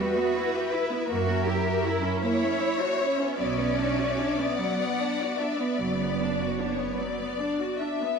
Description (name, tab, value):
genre	classical, slow romantic movement for string orchestra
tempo	49-54 BPM (dotted quarters)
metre	12/8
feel	rubato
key	B minor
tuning	A4 = 440 Hz
part	warm symphonic violin section	melody	0.0-8.2 s	C#5 to F#5	-34 LUFS	left 8 dB	none
part	warm symphonic violin section	second line	0.0-7.6 s	A#4 to D5	-30 LUFS	left 4 dB	none
part	clear symphonic viola section	accompaniment	0.0-8.2 s	F#3 to G4	-30 LUFS	right 1 dB	none
part	clear symphonic cello section	bass	0.0-7.8 s	B3 to G4	-31 LUFS	right 4 dB	none
part	clear symphonic double bass section	bass	1.1-6.8 s	F#1 to F#2	-32 LUFS	right 5 dB	none
room	moderate concert hall reverb, RT60 1.9 s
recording	none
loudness	-24 LUFS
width	side -6 dB against mid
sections	0.0-8.2 A section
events	none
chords	0.0 Em; 1.1 F#7b9; 3.4 Bm